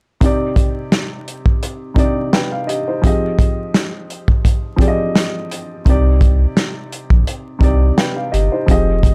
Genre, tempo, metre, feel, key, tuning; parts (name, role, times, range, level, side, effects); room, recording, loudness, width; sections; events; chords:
hip hop, boom-bap hip-hop; 85 BPM; 4/4; swing 54% on 16ths; C minor; A4 = 440 Hz
dark upright piano; accompaniment; 0.2-9.1 s; C3 to G5; -22 LUFS; equal; high-pass filter, low-pass filter
warm soul drum kit; drums; 0.2-9.1 s; hi-hat, kick drum, snare drum; -17 LUFS; equal
soft dub sub bass; bass; 5.9-9.1 s; F1 to C2; -16 LUFS; equal; transformer saturation
little or no reverb; dry, gritty hardware recording, transformer saturation, vinyl crackle; -16 LUFS; mono
0.2-9.1 A section
0.2 Cmadd9; 3.0 Fm7; 5.9 Cmadd9